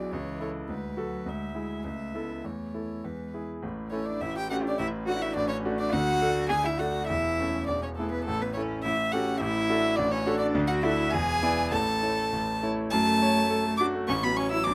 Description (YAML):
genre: quick classical-period movement for piano trio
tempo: 104 BPM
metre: 2/4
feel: straight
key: A major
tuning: A4 = 440 Hz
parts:
  - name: rich violin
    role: melody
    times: 0.0-14.7 s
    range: A4 to E6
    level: -32 LUFS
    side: equal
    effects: none
  - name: dark cello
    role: second line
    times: 0.0-14.7 s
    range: E3 to A4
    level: -34 LUFS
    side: equal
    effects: none
  - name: clear concert grand piano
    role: accompaniment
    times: 0.0-14.7 s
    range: E1 to D5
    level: -32 LUFS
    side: equal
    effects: none
room: little or no reverb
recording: close, detailed microphones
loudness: -28 LUFS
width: mono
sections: 0.0-3.6 A section; 3.6-12.9 B section; 12.9-14.7 C section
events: none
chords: 0.1 A/C#; 0.7 Bm7/D; 1.3 E7/D; 1.8 A/C#; 2.4 A/E; 3.0 E; 3.6 A5; 4.2 A7; 4.8 D/A; 5.9 D; 7.1 A/E; 7.7 E; 8.3 A; 8.8 A7; 9.4 D/A; 10.5 D; 11.1 E7; 11.7 A; 12.9 F#m; 14.1 F#m/A